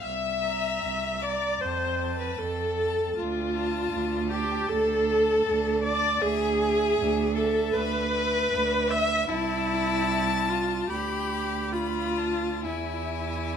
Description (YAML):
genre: classical, slow romantic movement for string quartet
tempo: 62-80 BPM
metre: 4/4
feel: rubato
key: unclear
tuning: A4 = 440 Hz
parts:
  - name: rich violin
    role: melody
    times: 0.0-13.6 s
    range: E4 to E5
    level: -33 LUFS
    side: left 13 dB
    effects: none
  - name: rich violin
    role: second line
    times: 0.0-13.6 s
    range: E5 to B5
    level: -35 LUFS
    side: left 6 dB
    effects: none
  - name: rich viola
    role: accompaniment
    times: 0.0-13.6 s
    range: E4 to E5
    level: -26 LUFS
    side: right 1 dB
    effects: none
  - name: clear cello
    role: bass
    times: 0.0-13.6 s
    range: C2 to F2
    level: -31 LUFS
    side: right 6 dB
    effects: none
room: moderate recital hall reverb, RT60 1.7 s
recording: close, detailed microphones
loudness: -24 LUFS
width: side -8 dB against mid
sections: 0.0-13.6 A section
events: none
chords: 0.0 C7; 1.6 F; 3.2 Dm; 6.2 E7/D; 9.3 Am/C; 10.9 Bdim/D; 12.6 E